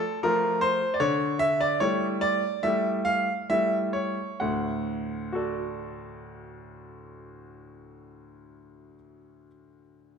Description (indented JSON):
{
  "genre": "classical-period piano sonatina",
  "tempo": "64-77 BPM",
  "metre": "4/4",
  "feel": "rubato",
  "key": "unclear",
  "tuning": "A4 = 440 Hz",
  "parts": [
    { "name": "clear baby grand piano", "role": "solo", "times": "0.0-10.2 s", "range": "D2 to F#5", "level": "-25 LUFS", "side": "equal", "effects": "none" }
  ],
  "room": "wet recital hall reverb, RT60 1.7 s",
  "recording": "minimal, uncompressed stereo recording",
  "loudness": "-24 LUFS",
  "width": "side -6 dB against mid",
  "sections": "0.0-4.4 A section; 4.4-8.0 B section",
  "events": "slowing down 0.0-4.4",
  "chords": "0.0 Dm (rootless); 1.0 A5/D; 4.4 D",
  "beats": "0.22 | 1.00 1.79 2.64 3.50 | 4.42 5.33 6.21 7.11"
}